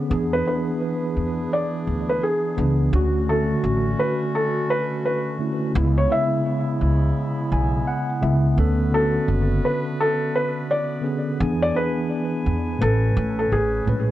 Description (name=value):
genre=lo-fi hip hop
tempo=85 BPM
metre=4/4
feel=swing 61% on 16ths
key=unclear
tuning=A4 = 441 Hz
part: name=mellow tine electric piano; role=accompaniment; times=0.0-14.1 s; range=A2 to G#5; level=-24 LUFS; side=equal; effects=medium stereo tremolo, low-pass filter
part: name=clear woodwind section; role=sustained chords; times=0.0-14.1 s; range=C#3 to G#5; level=-32 LUFS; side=equal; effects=low-pass filter
part: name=upright bass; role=bass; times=0.1-14.1 s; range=F#1 to E2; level=-22 LUFS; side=equal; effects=none
part: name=felt-muted upright piano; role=melody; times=0.3-13.8 s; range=G#4 to E5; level=-24 LUFS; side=equal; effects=low-pass filter, tape echo
room=light reverb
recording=worn, warbling old tape, cassette tape, warbly pitch drift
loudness=-19 LUFS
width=side -14 dB against mid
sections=0.0-14.1 A section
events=tine electric piano fill 7.2-8.6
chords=0.1 E7; 2.9 Dmaj7; 5.7 C#m7; 8.6 Bm7; 11.4 E7; 12.8 Amaj9